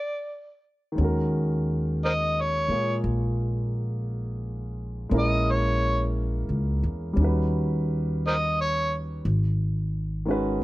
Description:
jazz ballad; 58 BPM; 4/4; swing 67% on 8ths; Eb minor; A4 = 440 Hz
overdriven harmonica; melody; 0.0-8.9 s; Bb4 to Eb5; -26 LUFS; equal
warm concert grand piano; accompaniment; 0.9-10.6 s; Eb3 to B4; -29 LUFS; equal
upright bass; bass; 1.0-10.6 s; Ab1 to Bb2; -26 LUFS; equal
little or no reverb; close, detailed microphones; -23 LUFS; side -18 dB against mid
1.0-10.6 A section
stop 0.0-1.0; harmonica solo 1.0-10.6
0.0 N.C.; 1.0 Ebm9; 5.1 Bbm7b5; 7.2 Eb7alt; 9.2 Abm7

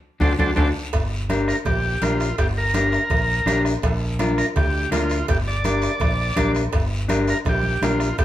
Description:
latin, cumbia; 166 BPM; 4/4; straight; G minor; A4 = 438 Hz
combo organ; melody; 0.2-8.2 s; F4 to D5; -24 LUFS; right 1 dB
mellow electric guitar; accompaniment; 0.2-8.1 s; D4 to Bb4; -24 LUFS; left 3 dB
modern bright fingered electric bass; bass; 0.2-8.2 s; G1 to D2; -24 LUFS; equal
bombo; percussion; 0.2-8.2 s; -25 LUFS; equal
congas; percussion; 0.2-8.2 s; -32 LUFS; right 3 dB
guiro; percussion; 0.2-8.2 s; -37 LUFS; left 2 dB
timbales and cowbell; percussion; 0.2-8.2 s; -32 LUFS; right 4 dB
wet large studio reverb, RT60 0.9 s; band playing live in one room; -18 LUFS; side -13 dB against mid
0.9-8.2 A section
drum fill 0.0-0.9; band accent 0.0-0.9
0.0 D7; 0.9 Gm; 3.8 Bb; 5.3 Gm

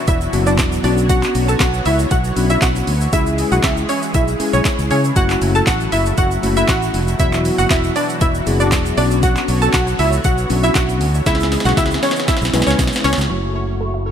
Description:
dance-pop; 118 BPM; 4/4; straight; B dorian; A4 = 440 Hz
soft supersaw; sustained chords; 0.0-14.1 s; B2 to C#5; -25 LUFS; right 1 dB; ensemble chorus, sidechain pumping, low-pass filter
glassy wavetable pluck; melody; 0.1-13.1 s; C#4 to A5; -19 LUFS; equal; chorus, ping-pong delay
fingered electric bass; bass; 0.1-14.1 s; E1 to C#3; -19 LUFS; equal; sidechain pumping
smooth R&B drum kit; drums; 0.1-13.3 s; handclaps, hi-hat, kick drum, shaker, snare drum; -19 LUFS; equal; overdrive
egg shaker; percussion; 0.1-13.3 s; -36 LUFS; right 12 dB
mellow tine electric piano; accompaniment; 0.3-14.1 s; F#3 to B4; -23 LUFS; left 4 dB; medium stereo tremolo, sidechain pumping, low-pass filter
shimmering bell with halo; melody; 13.3-14.1 s; C#6; -31 LUFS; equal; ensemble chorus, low-pass filter, ping-pong delay
wide unison pluck; arpeggios; 13.3-14.1 s; F#3 to E5; -29 LUFS; right 3 dB; sidechain pumping, low-pass filter
light reverb; bright 1980s-style digital production; -14 LUFS; side -8 dB against mid
0.0-13.3 A section
drop 0.0-13.3; drum fill 11.3-13.3
0.0 Esus2; 0.8 Bmadd9; 3.1 C#m; 5.2 F#m7; 7.2 Esus2; 9.0 Bmadd9; 11.3 C#m; 13.3 F#m7

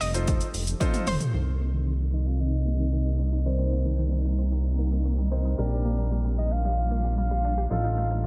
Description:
dance-pop; 113 BPM; 4/4; straight; C dorian; A4 = 441 Hz
analog pluck; melody; 0.0-1.2 s; C5 to Eb5; -36 LUFS; equal; chorus, slapback echo, tape echo
granular cloud pad; sustained chords; 0.0-8.3 s; C3 to A4; -37 LUFS; equal; built-in reverb, sidechain pumping, low-pass filter
chorused synth bass; bass; 0.0-8.3 s; F1 to C2; -27 LUFS; equal; sidechain pumping
house drum kit; drums; 0.0-1.3 s; hi-hat, kick drum, shaker, toms; -30 LUFS; equal
warm concert grand piano; accompaniment; 0.1-8.3 s; D4 to D5; -39 LUFS; equal; sidechain pumping, low-pass filter, slapback echo
unison pluck; arpeggios; 1.3-8.3 s; Eb3 to G4; -39 LUFS; equal; sidechain pumping, low-pass filter, slapback echo, tape echo
soft octave-layered synth lead; melody; 2.1-8.3 s; C5 to F5; -36 LUFS; equal; chorus, phaser, low-pass filter, slapback echo, tape echo
light reverb, digital ambience; -26 LUFS; mono
0.0-1.3 A section; 1.3-8.3 B section
drop 0.0-1.3; drum fill 0.8-1.3; filter sweep 1.3-8.3
0.0 F7; 1.3 Cm7; 5.6 Bb6; 7.7 F7/A

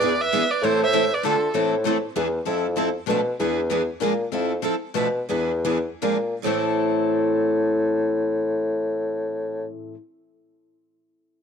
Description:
acoustic string swing (jazz manouche); 136-195 BPM; 3/4; swing 58% on 8ths; A minor; A4 = 440 Hz
clear violin; melody; 0.0-1.5 s; A4 to E5; -24 LUFS; right 1 dB
breathy clarinet; second line; 0.0-1.5 s; F4 to C5; -27 LUFS; right 11 dB
picked steel-string acoustic guitar; accompaniment; 0.0-10.0 s; A2 to A4; -27 LUFS; left 10 dB
picked steel-string acoustic guitar; accompaniment; 0.0-10.0 s; A2 to B4; -28 LUFS; right 12 dB
dark bassoon; bass; 0.0-9.7 s; E2 to D3; -24 LUFS; left 1 dB
light reverb, small room ambience; 1960s-style stereo with parts hard left and right; -20 LUFS; side -6 dB against mid
0.0-2.5 A section; 2.5-6.4 B section; 6.4-9.1 C section
slowing down 4.3-6.4
0.0 E7; 0.6 Am; 1.2 Dm; 1.5 Am; 2.2 E7; 2.5 Fmaj7; 3.1 Bm7b5; 3.4 E7; 4.0 Bb7; 4.3 Fmaj7; 5.0 Bm7b5; 5.3 E7; 6.0 Bb7; 6.4 Am

